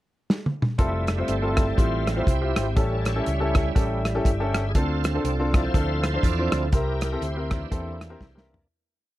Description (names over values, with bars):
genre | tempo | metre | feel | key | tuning
uptempo gospel | 121 BPM | 4/4 | swing 59% on 8ths | F major | A4 = 440 Hz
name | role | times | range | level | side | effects
warm soul drum kit | drums | 0.3-8.7 s | hi-hat, kick drum, rim click, snare drum, toms | -23 LUFS | equal | none
clear baby grand piano | accompaniment | 0.8-8.6 s | A2 to C5 | -28 LUFS | left 2 dB | none
bright tonewheel organ | sustained chords | 0.8-8.7 s | E3 to D5 | -29 LUFS | right 2 dB | slow rotary speaker, overdrive, chorus vibrato
fingered electric bass | bass | 0.8-8.6 s | F1 to E2 | -27 LUFS | equal | none
room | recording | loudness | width
small room ambience | none | -21 LUFS | side -16 dB against mid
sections
0.0-0.8 pickup bar; 0.8-8.7 breakdown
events
drum fill 0.3-0.8, 8.2-8.7; tonewheel organ solo 0.8-8.7; fade-out 6.7-8.7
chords
0.0 N.C.; 0.8 Fmaj7; 2.8 A7; 4.8 Dm7; 6.7 C7